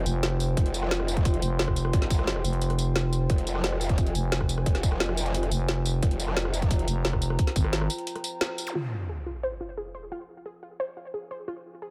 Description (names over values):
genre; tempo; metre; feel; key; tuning
dark technical drum and bass; 176 BPM; 4/4; straight; F minor; A4 = 437 Hz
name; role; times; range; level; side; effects
dark analog pad; sustained chords; 0.0-11.9 s; F4 to C6; -38 LUFS; equal; chorus, sidechain pumping
growl bass; bass; 0.0-6.9 s; F1 to Ab1; -31 LUFS; equal; chorus, tube saturation, sidechain pumping
growling FM bass; bass; 0.1-7.9 s; F1 to Ab1; -29 LUFS; equal; tube saturation
drum and bass drum kit; drums; 0.1-8.7 s; hi-hat, rim click, snare drum, tambourine; -33 LUFS; equal; low-pass filter on hats, low-pass filter on perc, low-pass filter on snare, low-pass filter on room
electronic kick drum; drums; 0.6-7.6 s; none; -27 LUFS; equal; none
zap and sub drop; sound effects; 8.7-10.1 s; none; -37 LUFS; equal; none
warbly dusty pluck; arpeggios; 8.8-11.9 s; F4 to C5; -37 LUFS; equal; chorus, sidechain pumping, tape echo
room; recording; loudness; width
little or no reverb; none; -27 LUFS; mono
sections
0.0-8.8 A section; 8.8-11.9 B section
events
drop 0.0-8.8; break 8.1-8.8; band accent 8.4; impact 8.8-10.1; filter sweep on synth arpeggio sound 8.8-11.9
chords
0.0 Fm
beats
0.23 | 0.57 0.91 1.25 1.59 | 1.93 2.27 2.62 2.96 | 3.30 3.64 3.98 4.32 | 4.66 5.00 5.34 5.68 | 6.03 6.37 6.71 7.05 | 7.39 7.73 8.07 8.41 | 8.75 9.09 9.43 9.78 | 10.12 10.46 10.80 11.14 | 11.48 11.82